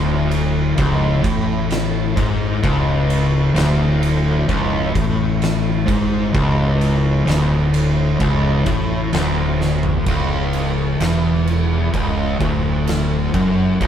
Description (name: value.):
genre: stoner and doom metal.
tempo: 64 BPM.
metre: 4/4.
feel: straight.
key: unclear.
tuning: A4 = 440 Hz.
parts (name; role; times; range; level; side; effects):
fuzz guitar; riff; 0.0-13.9 s; C#2 to A2; -17 LUFS; left 1 dB; distortion.
growling fingered electric bass; bass; 0.0-13.9 s; C#1 to A1; -22 LUFS; equal; overdrive, tube saturation.
oversized low-tuned drum kit; drums; 0.3-13.9 s; crash cymbal, kick drum, ride cymbal, snare drum, toms; -23 LUFS; right 1 dB; none.
room: light reverb.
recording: band playing live in one room.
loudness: -15 LUFS.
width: side -9 dB against mid.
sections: 0.0-10.1 A section; 10.1-13.9 B section.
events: drum fill 9.6-10.1.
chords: 0.0 C#5; 10.1 C#m.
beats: 0.77 1.70 | 2.62 3.55 4.48 5.41 | 6.34 7.27 8.20 9.13 | 10.06 11.00 11.93 12.87 | 13.80.